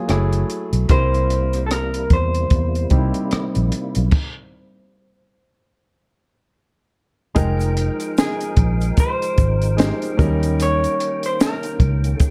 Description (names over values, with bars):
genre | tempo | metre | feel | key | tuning
lush 1970s-style soul | 74 BPM | 4/4 | swing 58% on 16ths | F minor | A4 = 439 Hz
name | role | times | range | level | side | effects
electric guitar through a small old amp | melody | 0.0-12.3 s | Ab4 to Db5 | -27 LUFS | equal | slapback echo
warm concert grand piano | accompaniment | 0.0-12.3 s | Gb3 to G5 | -28 LUFS | equal | none
vintage muted fingered electric bass | bass | 0.1-12.1 s | F1 to E2 | -22 LUFS | equal | none
compact cocktail drum kit | drums | 0.1-12.3 s | crash cymbal, hi-hat, kick drum, rim click, snare drum | -21 LUFS | equal | none
percussive tonewheel organ | sustained chords | 0.9-12.3 s | C3 to G5 | -33 LUFS | equal | overdrive, chorus vibrato, slow rotary speaker
egg shaker | percussion | 7.4-12.3 s | none | -42 LUFS | equal | none
room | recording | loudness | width
small room ambience | dark, warm production | -19 LUFS | mono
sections
0.0-7.4 A section; 7.4-12.3 B section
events
stop 4.1-7.4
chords
0.1 Gbm9; 0.9 C7; 7.4 Fm11; 10.2 Eb7